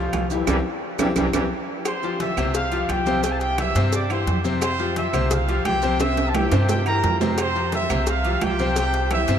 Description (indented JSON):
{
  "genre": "latin, salsa",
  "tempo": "174 BPM",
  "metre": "4/4",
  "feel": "straight",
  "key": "unclear",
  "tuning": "A4 = 438 Hz",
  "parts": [
    { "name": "clear trombone section", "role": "melody", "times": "0.0-1.4 s", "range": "C3 to F4", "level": "-31 LUFS", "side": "equal", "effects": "none" },
    { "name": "bright concert grand piano", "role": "accompaniment", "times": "0.0-9.4 s", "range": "C3 to C5", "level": "-26 LUFS", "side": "left 4 dB", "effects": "none" },
    { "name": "upright bass", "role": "bass", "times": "0.0-9.4 s", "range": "C2 to G2", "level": "-25 LUFS", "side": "right 1 dB", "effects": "none" },
    { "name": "claves", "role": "percussion", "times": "0.1-9.3 s", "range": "none", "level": "-38 LUFS", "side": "right 9 dB", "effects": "none" },
    { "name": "congas", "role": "percussion", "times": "0.1-9.3 s", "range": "none", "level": "-31 LUFS", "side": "equal", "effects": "none" },
    { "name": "cowbell", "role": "percussion", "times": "0.1-9.4 s", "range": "none", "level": "-32 LUFS", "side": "left 5 dB", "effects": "none" },
    { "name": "maracas", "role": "percussion", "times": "0.1-9.4 s", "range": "none", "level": "-38 LUFS", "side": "right 13 dB", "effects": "none" },
    { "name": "timbales and agogo bells", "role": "percussion", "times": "0.1-9.4 s", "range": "none", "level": "-29 LUFS", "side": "right 6 dB", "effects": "none" },
    { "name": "clear trumpet section", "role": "melody", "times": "1.9-9.4 s", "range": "G4 to E6", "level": "-24 LUFS", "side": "right 1 dB", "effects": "none" }
  ],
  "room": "moderate huge ambient reverb, RT60 8.8 s",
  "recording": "in a vast, echoing space",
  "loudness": "-19 LUFS",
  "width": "side -8 dB against mid",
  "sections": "0.0-1.9 A section; 1.9-9.4 B section",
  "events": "drum fill 0.5-1.9, 6.0-7.4; band accent 0.5-1.9",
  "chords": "0.0 C; 1.9 Fsus2; 3.2 C; 4.6 Fsus2; 6.0 C7; 7.4 Fsus2; 8.8 C"
}